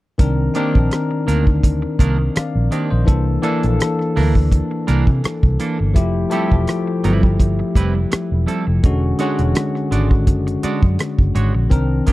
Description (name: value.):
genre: lush 1970s-style soul.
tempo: 83 BPM.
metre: 4/4.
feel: swing 54% on 16ths.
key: unclear.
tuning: A4 = 440 Hz.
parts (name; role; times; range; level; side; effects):
barky tine electric piano; accompaniment; 0.2-12.1 s; D3 to F5; -20 LUFS; left 2 dB; wide subtle chorus.
vintage muted fingered electric bass; bass; 0.2-12.0 s; E1 to C3; -18 LUFS; equal; none.
cloth-damped thuddy drum kit; drums; 0.2-12.1 s; hi-hat, kick drum, rim click; -15 LUFS; equal; none.
semi-hollow electric guitar; riff; 0.6-12.1 s; Eb3 to D5; -25 LUFS; right 5 dB; spring reverb.
room: little or no reverb.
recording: dry, close 1970s-style studio recording.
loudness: -15 LUFS.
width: side -18 dB against mid.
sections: 0.2-11.7 A section.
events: none.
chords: 0.2 Cm9; 3.1 C13; 6.0 Fmaj9; 8.8 E13.